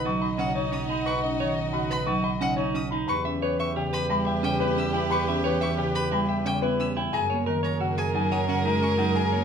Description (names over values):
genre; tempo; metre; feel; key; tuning
classical, minimalist pattern music; 178 BPM; 6/4; straight; unclear; A4 = 445 Hz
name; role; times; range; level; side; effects
edgy soprano saxophone; second line; 0.0-9.4 s; D#4 to A#4; -33 LUFS; right 4 dB; none
rich studio string section; sustained chords; 0.0-9.4 s; F#4 to D#5; -34 LUFS; left 4 dB; none
clean electric guitar; arpeggios; 0.0-9.4 s; C#4 to E5; -31 LUFS; right 6 dB; none
warm double bass; bass; 0.0-9.4 s; B1 to F#2; -31 LUFS; right 4 dB; none
warm concert grand piano; melody; 0.1-9.4 s; A#4 to C#6; -30 LUFS; left 7 dB; none
marimba with medium mallets; accompaniment; 0.1-9.4 s; C#3 to C#4; -29 LUFS; equal; none
warm violin; arpeggios; 0.4-9.3 s; F#5 to E6; -33 LUFS; left 2 dB; none
room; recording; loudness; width
moderate large studio reverb, RT60 0.8 s; minimal, uncompressed stereo recording; -23 LUFS; side -7 dB against mid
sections
0.0-9.4 A section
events
none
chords
0.0 B; 3.1 Em; 7.1 F#add9